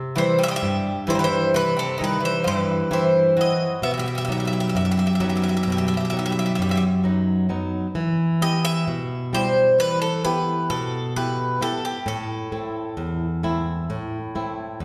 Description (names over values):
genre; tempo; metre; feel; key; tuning
greek folk, Greek bouzouki band; 131 BPM (eighths); 9/8; straight; E harmonic minor; A4 = 441 Hz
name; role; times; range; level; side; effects
flamenco guitar; accompaniment; 0.0-14.8 s; E2 to G4; -25 LUFS; equal; none
Greek bouzouki; melody; 0.2-13.9 s; G4 to E5; -26 LUFS; equal; none
Greek bouzouki; second line; 0.2-6.8 s; C3 to B3; -29 LUFS; equal; none
room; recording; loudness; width
wet recital hall reverb, RT60 1.6 s; recorded in a church or concert hall; -22 LUFS; mono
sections
0.0-8.0 A section; 8.0-14.8 A section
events
none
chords
0.0 C; 3.8 B; 8.0 Em; 12.1 Am